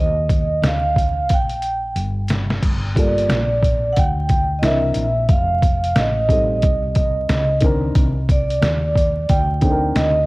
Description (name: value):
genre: hip hop, jazz-hop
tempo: 90 BPM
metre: 4/4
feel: swing 61% on 16ths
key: G minor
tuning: A4 = 440 Hz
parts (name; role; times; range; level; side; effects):
- vibraphone with medium hard mallets; melody; 0.0-10.3 s; D5 to G5; -20 LUFS; right 2 dB; cassette tape
- woody fretless electric bass; bass; 0.0-10.3 s; F1 to Eb2; -22 LUFS; equal; none
- trip hop sampler-style drum kit; drums; 0.3-10.2 s; crash cymbal, hi-hat, kick drum, snare drum; -19 LUFS; equal; cassette tape
- dark upright piano; accompaniment; 3.0-10.2 s; D#3 to Bb4; -24 LUFS; left 1 dB; cassette tape
room: light reverb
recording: home recording on cassette, vinyl crackle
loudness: -16 LUFS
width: side -22 dB against mid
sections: 0.0-2.6 A section; 2.6-10.3 B section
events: break 0.0-2.6; drum fill 1.3-2.6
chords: 0.0 Ebmaj9; 2.0 N.C.; 2.6 Gm9; 4.6 C9; 5.3 F9; 7.3 C#sus2; 8.0 Cm9